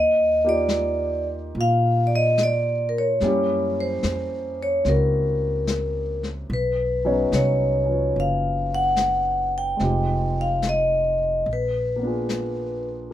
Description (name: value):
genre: jazz ballad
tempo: 73 BPM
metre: 4/4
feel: swing 68% on 8ths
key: unclear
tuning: A4 = 442 Hz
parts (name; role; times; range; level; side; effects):
- vibraphone with medium hard mallets; melody; 0.0-12.9 s; Bb4 to G5; -22 LUFS; equal; none
- upright bass; bass; 0.0-13.1 s; F1 to Bb2; -26 LUFS; equal; none
- warm concert grand piano; accompaniment; 0.4-13.1 s; F3 to C#5; -28 LUFS; left 1 dB; none
- vintage brush drum kit; drums; 0.7-13.1 s; brushed snare drum, hi-hat, snare drum; -29 LUFS; left 3 dB; none
room: moderate club reverb, RT60 0.5 s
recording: minimal, uncompressed stereo recording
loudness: -20 LUFS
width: side -12 dB against mid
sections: 0.0-13.1 A section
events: none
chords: 0.0 Ebmaj9; 3.2 Gb7b9; 6.5 Badd9; 9.8 Fm7; 11.5 Bb7b9